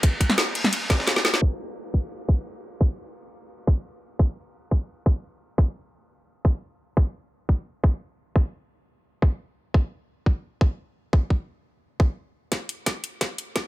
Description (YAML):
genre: drum and bass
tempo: 173 BPM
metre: 4/4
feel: straight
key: none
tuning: none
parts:
  - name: crunchy breakbeat drum kit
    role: drums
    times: 0.0-1.4 s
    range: hi-hat, ride cymbal, snare drum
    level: -32 LUFS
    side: equal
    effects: high-pass filter on cymbals, small room ambience, high-pass filter on hats, high-pass filter on snare, high-pass filter on room
  - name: electronic kick drum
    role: drums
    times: 0.0-13.6 s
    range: none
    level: -18 LUFS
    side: equal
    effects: high-pass filter on kick, small room ambience
  - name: garage drum kit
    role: drums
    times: 0.0-1.4, 12.5-13.6 s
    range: hi-hat, snare drum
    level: -24 LUFS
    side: equal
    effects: low-pass filter on hats, small room ambience, low-pass filter on snare
room: studio ambience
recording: low-pass filter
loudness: -22 LUFS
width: side -18 dB against mid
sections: 0.0-1.4 A section; 1.4-12.5 B section; 12.5-13.7 C section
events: drop 0.0-1.4; drum fill 0.9-1.4, 12.5-13.7; kick drops out 1.1-1.4; band accent 1.3; build-up 12.5-13.7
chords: none